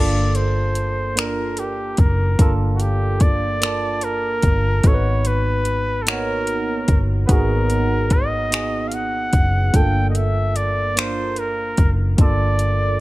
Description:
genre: slow six-eight R&B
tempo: 49 BPM (dotted quarters)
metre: 6/8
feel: straight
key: unclear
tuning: A4 = 440 Hz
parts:
  - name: warm flugelhorn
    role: melody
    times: 0.0-13.0 s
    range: F#4 to G5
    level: -23 LUFS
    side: equal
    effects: none
  - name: barky tine electric piano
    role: accompaniment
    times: 0.0-13.0 s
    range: A3 to A5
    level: -26 LUFS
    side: right 3 dB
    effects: overdrive, phaser
  - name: vintage muted fingered electric bass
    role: bass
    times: 0.0-13.0 s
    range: F#1 to Ab1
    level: -21 LUFS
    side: equal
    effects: none
  - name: smooth R&B drum kit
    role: drums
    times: 0.3-12.8 s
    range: finger snaps, hi-hat, kick drum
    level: -17 LUFS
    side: equal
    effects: none
room: little or no reverb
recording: none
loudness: -17 LUFS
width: side -18 dB against mid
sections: 0.0-13.0 A section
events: none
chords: 0.0 Gm9; 4.8 Abm9; 9.7 Gm9

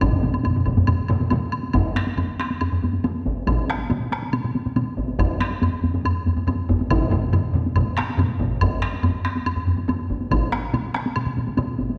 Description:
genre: japanese traditional, taiko drum ensemble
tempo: 140 BPM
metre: 4/4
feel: straight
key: none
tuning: none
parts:
  - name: taiko ensemble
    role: percussion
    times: 0.0-12.0 s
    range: none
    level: -30 LUFS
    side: equal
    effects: none
  - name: taiko ensemble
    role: percussion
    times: 0.0-10.0 s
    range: none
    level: -25 LUFS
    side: equal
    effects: none
  - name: taiko ensemble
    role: percussion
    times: 0.0-11.7 s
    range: none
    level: -27 LUFS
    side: equal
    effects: none
  - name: taiko ensemble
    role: percussion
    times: 0.0-11.9 s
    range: none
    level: -28 LUFS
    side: equal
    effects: none
  - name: woodblock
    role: percussion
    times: 0.0-11.7 s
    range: none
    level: -35 LUFS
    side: equal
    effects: none
room: wet scoring stage reverb, RT60 1.6 s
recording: dark, warm production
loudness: -22 LUFS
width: mono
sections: 0.0-1.7 A section; 1.7-12.0 B section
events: none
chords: none

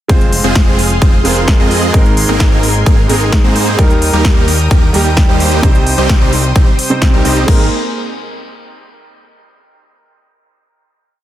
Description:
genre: EDM, festival progressive house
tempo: 130 BPM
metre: 4/4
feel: straight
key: Ab major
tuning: A4 = 440 Hz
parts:
  - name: warm grand piano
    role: accompaniment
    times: 0.1-7.7 s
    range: Ab2 to C5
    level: -18 LUFS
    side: right 2 dB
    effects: sidechain pumping, dub echo
  - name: lush unison pad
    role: sustained chords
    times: 0.1-7.7 s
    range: Bb3 to Eb6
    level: -23 LUFS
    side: equal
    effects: chorus, sidechain pumping
  - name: supersaw chords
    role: riff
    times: 0.1-7.7 s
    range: G3 to Eb5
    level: -17 LUFS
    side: right 1 dB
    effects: sidechain pumping, dub echo
  - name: fat analog bass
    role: bass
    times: 0.1-7.7 s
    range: F1 to Ab2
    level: -16 LUFS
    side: equal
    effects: sidechain pumping
  - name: big-room dance drum kit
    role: drums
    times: 0.1-7.6 s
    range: crash cymbal, hi-hat, snare drum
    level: -19 LUFS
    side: left 1 dB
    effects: none
  - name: electronic kick drum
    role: drums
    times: 0.1-7.6 s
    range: none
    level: -10 LUFS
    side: equal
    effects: none
room: digital ambience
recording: dense, heavily limited modern master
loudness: -8 LUFS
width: side -13 dB against mid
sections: 0.1-7.5 drop; 7.5-9.3 final chord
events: drop 0.1-7.5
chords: 0.1 Fm; 1.9 Abadd9; 3.8 Eb; 5.6 Cm; 7.5 Abadd9

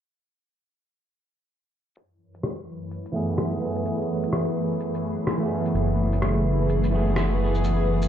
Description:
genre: future garage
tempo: 127 BPM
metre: 4/4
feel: swing 61% on 16ths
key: unclear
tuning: A4 = 441 Hz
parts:
  - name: granular cloud pad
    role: sustained chords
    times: 2.5-8.1 s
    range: F#2 to B4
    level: -27 LUFS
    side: left 1 dB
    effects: built-in reverb, analog chorus
  - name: electronic shaker and rim click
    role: drums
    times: 2.0-8.1 s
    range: none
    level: -29 LUFS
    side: left 1 dB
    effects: low-pass filter on perc, low-pass filter on snare, low-pass filter on room
  - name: electric guitar at the edge of break-up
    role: accompaniment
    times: 3.1-8.1 s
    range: E3 to G#4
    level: -27 LUFS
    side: right 2 dB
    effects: low-pass filter, diffuse ambient delay
  - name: dark detuned saw bass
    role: bass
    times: 5.7-8.1 s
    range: F#1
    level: -23 LUFS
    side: equal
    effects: tube saturation
room: light reverb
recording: low-pass filter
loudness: -22 LUFS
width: side -10 dB against mid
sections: 2.0-8.1 A section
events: filter sweep on drum 2.0-8.1; filter sweep on clean electric guitar 2.0-8.1; filter sweep 2.0-8.1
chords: 2.0 F#m11

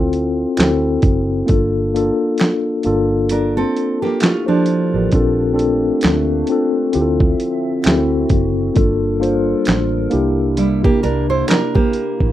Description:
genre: lo-fi hip hop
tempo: 66 BPM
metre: 4/4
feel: swing 57% on 16ths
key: G dorian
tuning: A4 = 444 Hz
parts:
  - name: mellow tine electric piano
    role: accompaniment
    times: 0.0-12.3 s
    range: Bb3 to C5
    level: -17 LUFS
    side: left 2 dB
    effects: medium stereo tremolo
  - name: vintage muted fingered electric bass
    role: bass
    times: 0.0-12.3 s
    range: F#1 to D2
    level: -21 LUFS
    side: right 1 dB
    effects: none
  - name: dusty soul sampler-style drum kit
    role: drums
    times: 0.1-12.3 s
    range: handclaps, hi-hat, kick drum, snare drum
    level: -16 LUFS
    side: right 1 dB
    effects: overdrive
  - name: finger snap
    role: percussion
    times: 0.6-11.7 s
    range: none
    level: -29 LUFS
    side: right 3 dB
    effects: none
  - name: nylon-string guitar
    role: second line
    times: 3.3-5.1, 10.6-12.3 s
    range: F3 to C5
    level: -18 LUFS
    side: right 4 dB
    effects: analog delay
  - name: warbly tape-like pad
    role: sustained chords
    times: 5.5-12.3 s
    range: C3 to E5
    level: -26 LUFS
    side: right 1 dB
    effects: chorus, built-in reverb
room: little or no reverb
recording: rough home demo mix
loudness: -14 LUFS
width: side -13 dB against mid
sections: 0.0-5.1 A section; 5.1-12.3 B section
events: kick muted 3.3-5.1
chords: 0.0 Dm9; 0.6 D7; 1.5 Gm9; 5.1 Bbmaj7; 6.9 Dm9; 7.9 D7; 8.8 Gm9; 10.1 C7

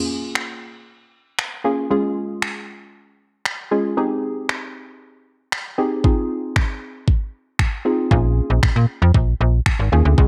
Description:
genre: dance-pop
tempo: 116 BPM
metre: 4/4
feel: straight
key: unclear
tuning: A4 = 440 Hz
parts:
  - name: soft round pluck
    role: accompaniment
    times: 0.0-10.3 s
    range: Ab3 to Ab4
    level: -24 LUFS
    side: equal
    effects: chorus, sidechain pumping
  - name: pop drum kit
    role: drums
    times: 0.4-10.3 s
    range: finger snaps, kick drum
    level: -22 LUFS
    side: equal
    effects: none
  - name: slap-like FM bass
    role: bass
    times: 8.1-10.3 s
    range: Ab1 to Bb2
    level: -18 LUFS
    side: equal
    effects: sidechain pumping
room: light reverb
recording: none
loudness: -20 LUFS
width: mono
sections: 0.0-10.3 A section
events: none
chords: 0.0 Bbm7; 1.9 Db; 4.0 Abmaj7; 6.0 Fm7; 8.1 Bbm7

